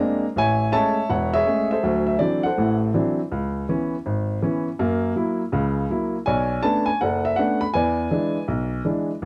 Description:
solo jazz; 162 BPM; 4/4; swing 65% on 8ths; A major; A4 = 440 Hz
warm upright piano; solo; 0.0-9.2 s; E1 to B5; -22 LUFS; equal
light reverb; dark, warm production; -22 LUFS; mono
0.4-9.2 A section
0.4 Amaj7; 1.8 D9; 3.3 C#m7; 4.8 F#7; 6.3 Bm9; 7.7 E7

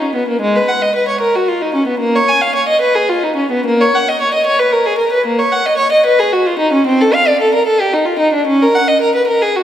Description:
classical, baroque-style suite movement for unaccompanied violin; 75 BPM (dotted quarters); 12/8; rubato; A4 = 440 Hz
rich violin; solo; 0.0-9.6 s; Ab3 to Ab5; -11 LUFS; equal
wet church reverb, RT60 2.6 s; -11 LUFS; side -10 dB against mid
0.0-9.6 A section

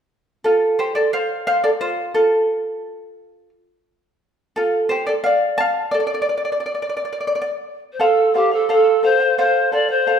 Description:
andean folk, Andean ensemble; 87 BPM; 3/4; straight; A4 = 441 Hz
charango; accompaniment; 0.4-10.2 s; F4 to A5; -18 LUFS; equal
bright reedy pan flute; melody; 7.9-10.2 s; G4 to D5; -16 LUFS; equal
wet recital hall reverb, RT60 1.4 s; -16 LUFS; side -8 dB against mid
0.0-8.0 A section; 8.0-10.2 B section
charango solo 0.0-8.0
0.0 F

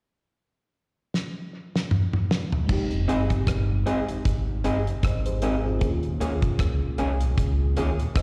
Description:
lovers rock reggae; 77 BPM; 4/4; swing 57% on 16ths; F minor; A4 = 439 Hz
damped 70s drum kit; drums; 1.1-8.2 s; crash cymbal, hi-hat, kick drum, rim click, snare drum, toms; -27 LUFS; equal
FM electric piano with soft pad layer; accompaniment; 2.7-8.2 s; Ab3 to Eb5; -34 LUFS; equal; chorus, slapback echo
tonewheel organ; accompaniment; 2.9-8.1 s; Eb2 to F4; -37 LUFS; equal
deep dub fingered electric bass; bass; 2.9-8.2 s; F1 to Eb2; -28 LUFS; equal
electric guitar through a small old amp; stabs; 3.1-7.9 s; Bb3 to Ab4; -32 LUFS; equal; slapback echo
light reverb, small room ambience; live gig heard through the venue's PA, recital hall reverb; -25 LUFS; mono
0.0-2.7 A section; 2.7-8.2 B section
drum fill 1.1-2.7
0.0 N.C.; 2.7 Fm7; 5.8 Eb7sus4

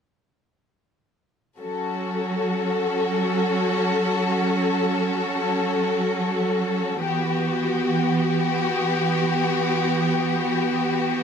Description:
drum and bass; free time; F# phrygian; A4 = 441 Hz
warm symphonic string section; sustained chords; 1.6-11.2 s; E3 to A4; -20 LUFS; equal
moderate plate reverb, RT60 2.3 s; -20 LUFS; side -7 dB against mid
1.6-11.2 A section
1.6 F#m; 7.0 Em

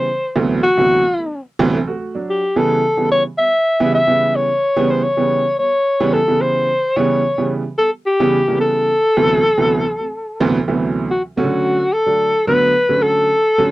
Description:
funk; 109 BPM; 4/4; straight; A mixolydian; A4 = 440 Hz
breathy alto saxophone; melody; 0.0-13.7 s; F#4 to E5; -15 LUFS; left 1 dB
clear upright piano; stabs; 0.0-13.7 s; D2 to A4; -18 LUFS; right 3 dB
light reverb; dry, close 1970s-style studio recording; -14 LUFS; side -17 dB against mid
0.0-11.1 A section; 11.1-13.7 B section
0.1 D13; 2.3 A9 (rootless); 8.9 D13; 11.1 Bm9

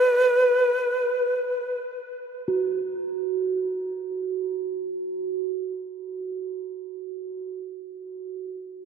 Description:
world meditative, free-time meditation music; free time; A4 = 440 Hz
breathy Native American-style cedar flute; melody; 0.0-1.8 s; B4; -21 LUFS; equal; ping-pong delay
bronze singing bowl; texture; 2.5-7.1 s; F#4; -28 LUFS; right 7 dB
wet huge ambient reverb, RT60 4.8 s; -24 LUFS; side -6 dB against mid
0.0-2.5 A section; 2.5-6.5 B section

